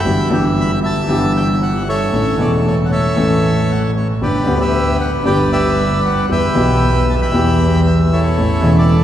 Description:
tango; 115 BPM; 4/4; rubato; A4 = 440 Hz
bandoneon; melody; 0.0-9.0 s; E4 to B5; -18 LUFS; right 1 dB
warm concert grand piano; accompaniment; 0.0-9.0 s; E1 to A4; -16 LUFS; left 1 dB
clear double bass; bass; 0.0-9.0 s; E1 to E2; -18 LUFS; equal
wet cathedral reverb, RT60 5.0 s; recorded in a church or concert hall, vinyl crackle; -13 LUFS; side -11 dB against mid
0.0-9.0 A section
0.0 Em/G; 2.1 A; 4.2 G; 6.3 Em; 8.4 A

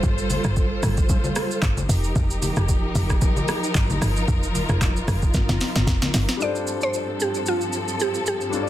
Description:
amapiano; 113 BPM; 4/4; swing 55% on 16ths; G minor; A4 = 440 Hz
dark studio string section; sustained chords; 0.0-8.7 s; G2 to C5; -27 LUFS; equal; sidechain pumping
woody log drum bass; bass; 0.0-6.3 s; F1 to G1; -23 LUFS; equal
smooth R&B drum kit; drums; 0.0-8.7 s; handclaps, hi-hat, kick drum, rim click, shaker, snare drum; -24 LUFS; equal; overdrive
congas; percussion; 0.0-6.1 s; -30 LUFS; left 2 dB
mallet-like synth pluck; melody; 6.4-8.7 s; F4 to D5; -25 LUFS; right 1 dB; chorus, ping-pong delay
clear grand piano; accompaniment; 6.4-8.7 s; G3 to D5; -29 LUFS; left 6 dB
digital ambience; dense, heavily limited modern master; -20 LUFS; side -13 dB against mid
0.0-6.4 A section; 6.4-8.7 B section
drop 0.0-6.4; drum fill 5.3-6.4
0.0 G9sus4; 1.9 F9sus4; 6.4 G9sus4

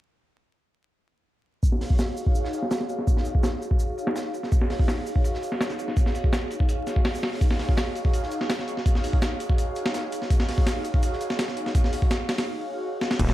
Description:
drum and bass, jungle; 166 BPM; 4/4; straight; Eb minor; A4 = 440 Hz
airy breathy pad; sustained chords; 1.6-13.3 s; Eb4 to F5; -30 LUFS; equal; chorus, vintage 12-bit sampler grit
breakbeat sampler-style drum kit; drums; 1.6-13.3 s; crash cymbal, hi-hat, kick drum, snare drum; -23 LUFS; equal; low-pass filter on hats, low-pass filter on kick, low-pass filter on snare, low-pass filter on cymbals, low-pass filter on room
crunchy breakbeat drum kit; drums; 1.6-12.4 s; hi-hat, shaker, snare drum; -42 LUFS; right 2 dB; high-pass filter on hats, high-pass filter on snare, high-pass filter on perc, high-pass filter on room
detuned saw bass; bass; 13.2-13.3 s; Eb1; -22 LUFS; equal
light reverb; vinyl crackle; -22 LUFS; side -15 dB against mid
1.6-13.2 A section
filter sweep on drum 1.6-13.2; filter sweep on analog synth pad 1.6-13.2; break 12.5-13.2; drum fill 13.0
1.6 Ebm11

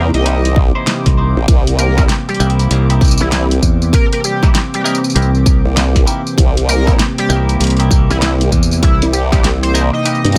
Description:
glitch hop; 98 BPM; 4/4; swing 62% on 16ths; A4 = 440 Hz
warbly tape-like pad; sustained chords; 0.0-10.4 s; C3 to D#5; -25 LUFS; equal
semi-hollow electric guitar; stabs; 0.0-10.2 s; Bb3 to C5; -26 LUFS; equal; phaser, sidechain pumping, dub echo
formant-sweep wobble bass; bass; 0.0-10.4 s; Bb1 to G2; -16 LUFS; equal; chorus
airy breathy pad; texture; 0.0-10.4 s; C4 to D6; -27 LUFS; equal; chorus, sidechain pumping
sync lead; melody; 0.1-10.4 s; E4 to D#5; -24 LUFS; equal; analog chorus, dub echo
pop drum kit; drums; 0.1-10.4 s; hi-hat, snare drum, tambourine; -21 LUFS; equal
electronic kick drum; drums; 0.6-10.4 s; -15 LUFS; equal
modern bright fingered electric bass; bass; 1.1-9.0 s; C2 to E2; -16 LUFS; equal
little or no reverb; -13 LUFS; mono
0.0-10.4 A section
0.0 C7#9

